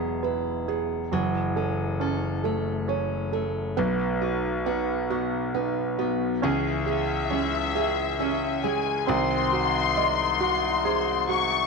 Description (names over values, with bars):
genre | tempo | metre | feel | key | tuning
six-eight pop ballad | 45 BPM (dotted quarters) | 6/8 | straight | unclear | A4 = 440 Hz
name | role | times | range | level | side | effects
felt-muted upright piano | accompaniment | 0.0-11.7 s | E3 to D#5 | -28 LUFS | right 13 dB | none
fingerpicked steel-string acoustic guitar | arpeggios | 0.0-11.7 s | D#3 to A4 | -31 LUFS | left 10 dB | none
clear concert grand piano | bass | 0.0-11.7 s | E1 to C#2 | -30 LUFS | left 2 dB | none
warm studio violin section | second line | 6.4-11.7 s | E5 to C#6 | -26 LUFS | left 9 dB | none
room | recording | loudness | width
moderate echo chamber reverb, RT60 1.4 s, studio reverb | 1960s-style stereo with parts hard left and right | -23 LUFS | side -4 dB against mid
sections
0.0-6.4 A section; 6.4-11.7 B section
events
none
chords
0.0 Eadd9; 1.1 F#m7; 3.8 B; 6.4 C#m; 9.1 G#7/B#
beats
| 1.13 2.45 | 3.78 5.11 | 6.43 7.76 | 9.09 10.41